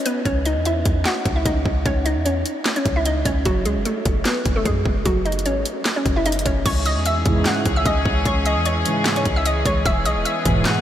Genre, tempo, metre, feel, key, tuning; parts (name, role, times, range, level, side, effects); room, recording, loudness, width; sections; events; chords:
hip hop, trap; 150 BPM; 4/4; half-time; C# minor; A4 = 440 Hz
hollow square pluck; melody; 0.0-10.8 s; F#3 to F#6; -22 LUFS; equal; chorus, tape echo
trap drum kit; drums; 0.1-10.8 s; crash cymbal, handclaps, hi-hat, kick drum, snare drum; -23 LUFS; equal
warm 808-style bass; bass; 0.3-10.6 s; E1 to F#2; -23 LUFS; equal
rich symphonic string section; sustained chords; 6.7-10.8 s; E3 to G#4; -24 LUFS; left 1 dB
mellow synth brass; stabs; 7.3-10.8 s; G#2 to E3; -25 LUFS; right 2 dB; chorus
wet huge ambient reverb, RT60 8.2 s; dreamy mix soaked in reverb; -18 LUFS; side -11 dB against mid
0.0-6.7 A section; 6.7-10.8 B section
break 0.0
0.3 C#m; 3.5 F#m; 6.7 C#m; 9.9 E